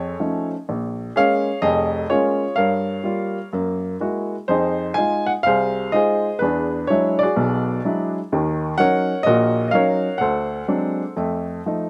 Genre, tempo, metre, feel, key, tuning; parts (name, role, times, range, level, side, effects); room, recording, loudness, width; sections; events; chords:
solo jazz; 126 BPM; 4/4; swing 66% on 8ths, rubato; A4 = 440 Hz
warm upright piano; solo; 0.0-11.9 s; F1 to Ab5; -21 LUFS; equal
little or no reverb; recorded outdoors, with no room sound; -21 LUFS; mono
0.0-11.9 A section
0.0 F7alt; 0.7 Bbm7; 2.6 Gm7b5; 3.5 Gb9; 4.5 Fm7; 6.4 E9; 8.3 Ebm7; 10.2 D7#11; 11.2 F7